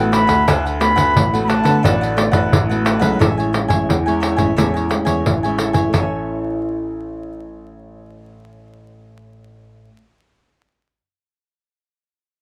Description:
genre	samba and choro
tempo	88 BPM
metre	4/4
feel	straight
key	D major, A major from 3.2 s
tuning	A4 = 440 Hz
part	concert flute	melody	0.0-2.5 s	D5 to B5	-20 LUFS	equal	none
part	cavaquinho	accompaniment	0.0-9.9 s	D4 to G#5	-26 LUFS	equal	none
part	nylon-string guitar	accompaniment	0.0-10.0 s	A2 to F#4	-23 LUFS	equal	none
part	warm baby grand piano	bass	0.0-9.9 s	A1 to D3	-22 LUFS	equal	none
part	pandeiro	percussion	0.1-6.1 s	none	-22 LUFS	equal	none
room	little or no reverb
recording	close, detailed microphones, vinyl crackle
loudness	-17 LUFS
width	mono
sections	0.0-3.2 A section; 3.2-5.9 B section; 5.9-8.7 C section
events	none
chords	0.0 D6; 3.2 Amaj7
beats	| 0.48 1.16 1.84 2.53 | 3.21 3.89 4.57 5.26 | 5.94 6.62 7.31 7.99

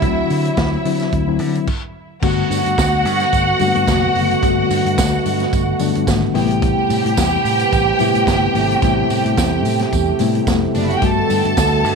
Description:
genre	disco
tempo	109 BPM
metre	4/4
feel	swing 56% on 16ths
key	G major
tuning	A4 = 440 Hz
part	clear studio string section	second line	0.0-11.9 s	D4 to A5	-20 LUFS	right 1 dB	tape echo
part	mellow reed electric piano	accompaniment	0.0-11.9 s	C3 to F#4	-20 LUFS	left 12 dB	fast tremolo
part	dark French horn section	sustained chords	0.0-11.9 s	B2 to G4	-23 LUFS	right 18 dB	none
part	fingered electric bass	bass	0.0-11.9 s	F1 to D3	-22 LUFS	right 2 dB	none
part	vintage drum kit	drums	0.0-11.9 s	crash cymbal, hi-hat, kick drum, snare drum	-22 LUFS	right 2 dB	none
part	congas	percussion	0.6-11.7 s	none	-29 LUFS	left 11 dB	none
part	tambourine	percussion	2.2-11.9 s	none	-32 LUFS	right 17 dB	none
room	light reverb, small room ambience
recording	1960s-style stereo with parts hard left and right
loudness	-14 LUFS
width	side -5 dB against mid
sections	0.0-2.2 A section; 2.2-11.9 B section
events	stop 1.7-2.2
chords	0.0 D9; 2.2 Gmaj9; 6.4 Am9; 11.0 Gmaj9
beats	| 0.02 0.57 1.12 1.68 | 2.23 2.78 3.33 3.88 | 4.43 4.98 5.53 6.08 | 6.63 7.17 7.72 8.27 | 8.82 9.37 9.92 10.47 | 11.02 11.57

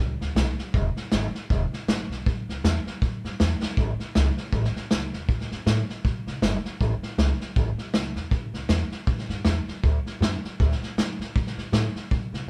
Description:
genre	rockabilly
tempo	158 BPM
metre	4/4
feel	swing 59% on 8ths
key	A mixolydian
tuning	A4 = 440 Hz
part	upright bass	bass	0.0-12.5 s	E1 to C3	-29 LUFS	equal	none
part	vintage drum kit	drums	0.2-12.4 s	hi-hat, kick drum, snare drum	-28 LUFS	equal	none
room	light reverb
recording	band playing live in one room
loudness	-26 LUFS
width	mono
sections	0.0-3.8 A section; 3.8-12.5 A section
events	drum fill 3.6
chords	none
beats	0.36 | 0.74 1.12 1.50 1.88 | 2.25 2.63 3.01 3.39 | 3.77 4.15 4.53 4.91 | 5.28 5.66 6.04 6.42 | 6.80 7.18 7.56 7.94 | 8.32 8.70 9.08 9.46 | 9.84 10.21 10.59 10.97 | 11.35 11.73 12.11 12.49

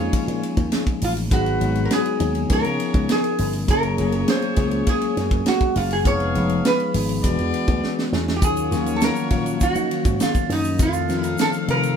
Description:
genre	polished 1980s jazz-funk pop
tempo	101 BPM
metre	4/4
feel	straight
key	unclear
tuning	A4 = 443 Hz
part	metal-body resonator slide guitar	melody	0.0-12.0 s	Eb4 to Db5	-24 LUFS	right 2 dB	ping-pong delay
part	clear horn section	second line	0.0-12.0 s	Ab3 to F5	-30 LUFS	left 3 dB	none
part	mellow tine electric piano	accompaniment	0.0-12.0 s	Eb3 to F5	-25 LUFS	left 3 dB	fast stereo tremolo
part	slap bass with an envelope filter	bass	0.0-11.9 s	E1 to Eb3	-24 LUFS	equal	none
part	tight funk drum kit	drums	0.1-12.0 s	hi-hat, kick drum, ride cymbal, snare drum	-24 LUFS	right 1 dB	none
part	tube shaker	percussion	8.4-12.0 s	none	-37 LUFS	right 7 dB	none
room	moderate studio ambience, RT60 0.5 s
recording	band playing live in one room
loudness	-18 LUFS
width	side -7 dB against mid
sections	0.0-12.0 A section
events	drum fill 7.8-8.4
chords	0.0 Bbm9; 1.3 Abm7; 2.5 Db13; 3.7 Gbmaj9; 6.1 Fm7b5; 7.2 E9; 8.4 Ebm9; 10.8 F7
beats	0.13 0.72 | 1.31 1.91 2.50 3.09 | 3.68 4.28 4.87 5.46 | 6.05 6.65 7.24 7.83 | 8.42 9.02 9.61 10.20 | 10.79 11.39

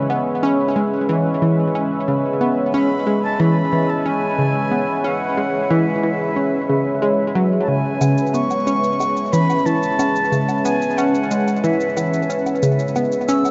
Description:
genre	ambient, sequencer-driven space music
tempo	91 BPM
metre	4/4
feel	straight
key	C# minor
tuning	A4 = 440 Hz
part	sweeping resonant pad	sustained chords	0.0-13.5 s	G#3 to E5	-23 LUFS	equal	chorus
part	analog pluck	riff	0.1-13.4 s	C#3 to C#4	-22 LUFS	equal	chorus, cassette tape, delay
part	breathy concert flute	melody	2.7-13.5 s	E5 to E6	-26 LUFS	equal	delay
part	shaker and woodblock	percussion	8.0-13.5 s	none	-34 LUFS	equal	delay
room	wet huge ambient reverb, RT60 7.7 s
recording	dreamy mix soaked in reverb, nothing above 7.8 kHz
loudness	-19 LUFS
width	mono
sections	0.0-13.5 A section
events	none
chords	0.0 C#m7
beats	| 0.10 0.76 1.42 2.08 | 2.74 3.40 4.06 4.72 | 5.38 6.04 6.69 7.35 | 8.01 8.67 9.33 9.99 | 10.65 11.31 11.97 12.63 | 13.29

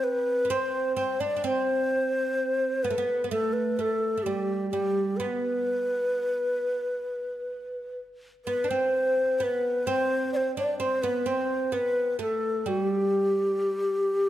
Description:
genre	turkish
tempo	128 BPM (eighths)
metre	10/8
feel	straight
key	unclear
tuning	A4 = 440 Hz
part	breathy mellow low ney	melody	0.0-14.3 s	G4 to D5	-26 LUFS	left 1 dB	none
part	oud	second line	0.0-14.3 s	G3 to D4	-31 LUFS	right 5 dB	none
room	moderate scoring stage reverb, RT60 1.9 s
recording	faint mains hum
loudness	-24 LUFS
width	side -13 dB against mid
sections	0.5-14.3 A section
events	none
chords	none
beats	0.04 | 0.51 0.97 1.44 1.91 2.37 2.84 3.31 3.78 4.24 4.71 | 5.18 5.65 6.12 6.58 7.05 7.52 7.99 8.46 8.92 9.39 | 9.86 10.33 10.80 11.26 11.73 12.20 12.67 13.14 13.61 14.08

